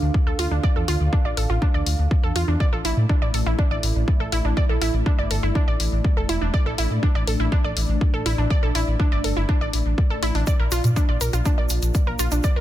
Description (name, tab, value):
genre	melodic techno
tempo	122 BPM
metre	4/4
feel	straight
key	unclear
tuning	A4 = 441 Hz
part	dark analog pad	sustained chords	0.0-12.6 s	A3 to F5	-31 LUFS	equal	chorus, phaser, sidechain pumping
part	dark detuned saw bass	bass	0.0-12.6 s	E1 to Bb2	-22 LUFS	equal	sidechain pumping
part	electronic kick drum	drums	0.1-12.5 s	none	-20 LUFS	equal	none
part	wide unison pluck	arpeggios	0.3-12.6 s	D4 to D5	-27 LUFS	right 1 dB	sidechain pumping, tape echo
part	house drum kit	drums	0.4-12.5 s	hi-hat, toms	-30 LUFS	left 3 dB	sidechain pumping on cymbals, sidechain pumping on hats, sidechain pumping on toms
part	tube shaker	percussion	10.5-12.5 s	none	-33 LUFS	right 4 dB	none
room	digital ambience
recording	dense, heavily limited modern master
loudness	-19 LUFS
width	side -13 dB against mid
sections	0.0-12.6 A section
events	none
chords	0.0 Dm; 2.6 Asus4; 10.5 Bb